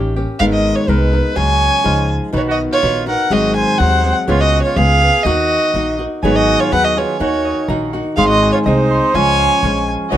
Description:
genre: mexican folk, mariachi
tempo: 124 BPM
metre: 2/4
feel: straight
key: unclear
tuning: A4 = 441 Hz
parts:
  - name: flamenco guitar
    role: accompaniment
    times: 0.0-10.2 s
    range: G#2 to A#4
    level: -18 LUFS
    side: left 1 dB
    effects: none
  - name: upright bass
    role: bass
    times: 0.0-10.2 s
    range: G#1 to D#2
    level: -19 LUFS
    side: equal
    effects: none
  - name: dark violin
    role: melody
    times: 0.4-10.2 s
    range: B4 to G#5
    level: -16 LUFS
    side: equal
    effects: none
  - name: clear trumpet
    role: second line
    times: 1.4-10.2 s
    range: D#4 to C#5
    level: -22 LUFS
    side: right 6 dB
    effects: none
  - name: Celtic harp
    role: arpeggios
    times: 6.2-10.2 s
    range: B4 to C#6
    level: -21 LUFS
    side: right 3 dB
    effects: none
  - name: rich chamber violin section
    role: sustained chords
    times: 10.1-10.2 s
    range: B3 to D#5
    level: -19 LUFS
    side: left 1 dB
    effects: none
room: light reverb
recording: close, detailed microphones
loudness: -12 LUFS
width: side -11 dB against mid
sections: 0.0-10.2 A section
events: none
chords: 0.4 G#madd9; 1.4 C#sus4; 1.8 C#add9; 2.3 B; 3.3 G#7; 4.3 C#7; 5.2 D#m; 6.2 G#m7; 7.2 D#m; 8.2 G#; 9.1 C#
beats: | 0.39 0.88 | 1.36 1.85 | 2.34 2.83 | 3.31 3.80 | 4.28 4.76 | 5.25 5.74 | 6.22 6.71 | 7.20 7.68 | 8.17 8.65 | 9.14 9.63 | 10.12

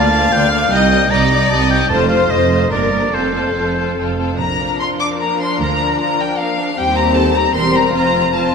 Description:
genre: quick classical-period movement for symphony orchestra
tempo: 140-157 BPM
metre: 3/4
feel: rubato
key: Bb major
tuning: A4 = 439 Hz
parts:
  - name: rich chamber violin section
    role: melody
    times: 0.0-8.5 s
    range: A4 to D6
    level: -19 LUFS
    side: left 5 dB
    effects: none
  - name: clear oboe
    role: second line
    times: 0.0-4.2 s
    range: C5 to Bb5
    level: -18 LUFS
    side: equal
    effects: none
  - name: rich chamber violin section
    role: second line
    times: 0.0-8.5 s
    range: Bb3 to F5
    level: -20 LUFS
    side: left 3 dB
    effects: none
  - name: rich studio viola section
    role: accompaniment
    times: 0.0-8.5 s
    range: F3 to G4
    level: -22 LUFS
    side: right 3 dB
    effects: none
  - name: rich chamber double bass section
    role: bass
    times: 0.0-8.5 s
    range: E1 to Eb2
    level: -22 LUFS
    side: right 2 dB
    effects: none
  - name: warm chamber cello section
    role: bass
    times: 0.0-8.5 s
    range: C2 to Bb2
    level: -21 LUFS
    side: right 3 dB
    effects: none
  - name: timpani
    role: percussion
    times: 1.9-2.5 s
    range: F2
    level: -27 LUFS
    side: equal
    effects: none
  - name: clear French horn section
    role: sustained chords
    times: 4.4-8.5 s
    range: F3 to D4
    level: -22 LUFS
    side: left 3 dB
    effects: none
room: wet concert hall reverb, RT60 1.9 s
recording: none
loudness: -13 LUFS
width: side -6 dB against mid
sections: 0.0-4.4 A section; 4.4-8.5 B section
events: none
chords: 0.0 Bb/D; 0.7 Cm; 1.9 F7; 2.7 Gm; 3.1 F; 4.4 Bb; 5.6 Bb/D; 6.8 Cm/Eb; 7.6 C7/E; 8.0 F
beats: 0.33 | 0.72 1.11 1.51 | 1.91 2.31 2.71 | 3.13 3.56 3.98 | 4.40 4.81 5.21 | 5.61 6.00 6.39 | 6.77 7.17 7.56 | 7.95 8.35

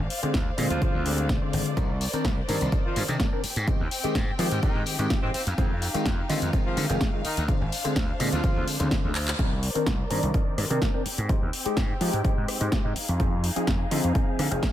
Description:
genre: filtered disco house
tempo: 126 BPM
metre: 4/4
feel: straight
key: C minor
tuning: A4 = 439 Hz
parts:
  - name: clear studio string section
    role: sustained chords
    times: 0.0-14.7 s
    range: C4 to G5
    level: -35 LUFS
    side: left 1 dB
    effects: sidechain pumping, low-pass filter
  - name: gritty slap bass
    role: bass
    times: 0.0-14.6 s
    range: F1 to F3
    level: -28 LUFS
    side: equal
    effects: overdrive, sidechain pumping, low-pass filter
  - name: house drum kit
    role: drums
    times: 0.1-14.7 s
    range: handclaps, hi-hat, rim click, snare drum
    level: -31 LUFS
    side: left 1 dB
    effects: sidechain pumping on hats, studio ambience
  - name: auto-wah clav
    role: accompaniment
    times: 0.2-14.7 s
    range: D3 to C5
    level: -29 LUFS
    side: left 1 dB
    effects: phaser, vintage 12-bit sampler grit, sidechain pumping, low-pass filter
  - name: electronic kick drum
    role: drums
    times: 0.3-14.7 s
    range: none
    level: -26 LUFS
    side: equal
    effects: studio ambience
  - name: bright horn section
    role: melody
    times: 0.7-8.7 s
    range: Eb3 to F4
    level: -35 LUFS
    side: equal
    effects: vintage 12-bit sampler grit, sidechain pumping, low-pass filter, dub echo
  - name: tambourine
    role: percussion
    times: 1.8-14.7 s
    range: none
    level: -41 LUFS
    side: left 5 dB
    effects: sidechain pumping on perc, low-pass filter on perc
room: little or no reverb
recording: none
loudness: -23 LUFS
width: side -12 dB against mid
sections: 0.0-9.4 A section; 9.4-14.7 A section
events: drum fill 9.2; band accent 9.3; filter sweep 9.4-14.7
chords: 0.0 Dm7b5; 1.8 Cm9; 3.4 Abmaj7; 5.3 Fm7; 7.5 Dm7b5; 9.4 Cm9; 11.1 Abmaj7; 13.0 Fm7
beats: 0.34 0.82 1.29 | 1.77 2.25 2.72 3.20 | 3.68 4.15 4.63 5.10 | 5.58 6.06 6.53 7.01 | 7.49 7.96 8.44 8.91 | 9.39 9.87 10.34 10.82 | 11.29 11.77 12.25 12.72 | 13.20 13.68 14.15 14.63

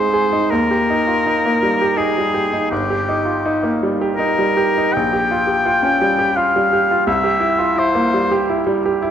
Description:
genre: classical, romantic duo for oboe and grand piano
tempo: 82 BPM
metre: 3/4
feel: uneven beats, rubato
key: unclear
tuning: A4 = 441 Hz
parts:
  - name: clear oboe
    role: melody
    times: 0.0-8.5 s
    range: G4 to G5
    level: -18 LUFS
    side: left 2 dB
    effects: none
  - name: bright grand piano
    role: accompaniment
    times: 0.0-9.1 s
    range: G1 to Ab4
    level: -17 LUFS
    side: right 1 dB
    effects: none
room: moderate concert hall reverb, RT60 1.7 s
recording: none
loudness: -14 LUFS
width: side -9 dB against mid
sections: 0.0-9.1 A section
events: none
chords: 0.5 Eb; 2.7 Eb/G; 4.9 Gm7b5/Bb; 7.1 C7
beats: | 0.50 1.25 1.98 | 2.71 3.45 4.17 | 4.94 5.67 6.37 | 7.07 7.77 8.49

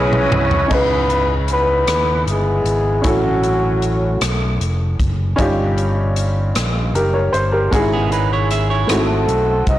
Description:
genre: slow gospel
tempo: 51 BPM (dotted quarters)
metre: 6/8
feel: straight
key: C# minor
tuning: A4 = 440 Hz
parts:
  - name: mellow horn section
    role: melody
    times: 0.0-4.2, 8.9-9.8 s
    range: F#3 to D#5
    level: -18 LUFS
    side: equal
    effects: none
  - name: clear upright piano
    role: accompaniment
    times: 0.0-9.8 s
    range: G2 to D#5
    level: -21 LUFS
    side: equal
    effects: none
  - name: overdriven tonewheel organ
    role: sustained chords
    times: 0.0-0.7 s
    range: C#4 to D#5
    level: -24 LUFS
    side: right 1 dB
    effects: slow rotary speaker, chorus vibrato
  - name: fingered electric bass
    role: bass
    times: 0.0-9.8 s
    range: E#1 to D#2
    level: -19 LUFS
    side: equal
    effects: transformer saturation
  - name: swinging big-band drum kit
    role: drums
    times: 0.1-9.8 s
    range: crash cymbal, hi-hat, kick drum, rim click, toms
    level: -23 LUFS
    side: equal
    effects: soft clipping on snare
  - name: clean electric guitar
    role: second line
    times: 7.7-9.1 s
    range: B3 to E5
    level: -22 LUFS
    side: right 6 dB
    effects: slapback echo
room: light reverb, studio ambience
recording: blown-out, overdriven recording, overdrive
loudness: -14 LUFS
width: side -14 dB against mid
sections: 0.7-9.8 A section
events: drum fill 0.0-0.7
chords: 0.0 C#m9; 3.0 A6; 5.4 D#9/G; 7.7 C#m/G#; 8.9 G#7b9b13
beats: | 0.71 1.88 | 3.05 4.21 | 5.38 6.55 | 7.72 8.89

